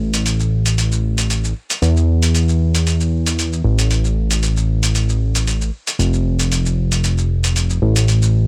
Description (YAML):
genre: nu-disco, nu disco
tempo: 115 BPM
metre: 4/4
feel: swing 53% on 16ths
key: unclear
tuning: A4 = 437 Hz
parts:
  - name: fat analog bass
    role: bass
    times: 0.0-8.5 s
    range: F1 to E2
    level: -18 LUFS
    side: equal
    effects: tube saturation
  - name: electronic hi-hat and shaker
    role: drums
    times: 0.1-8.3 s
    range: none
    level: -24 LUFS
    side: equal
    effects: overdrive
room: little or no reverb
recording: dry, gritty hardware recording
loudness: -17 LUFS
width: mono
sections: 0.0-8.5 A section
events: none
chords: none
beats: 0.26 0.78 1.30 | 1.82 2.34 2.87 3.39 | 3.91 4.43 4.95 5.47 | 6.00 6.52 7.04 7.56 | 8.08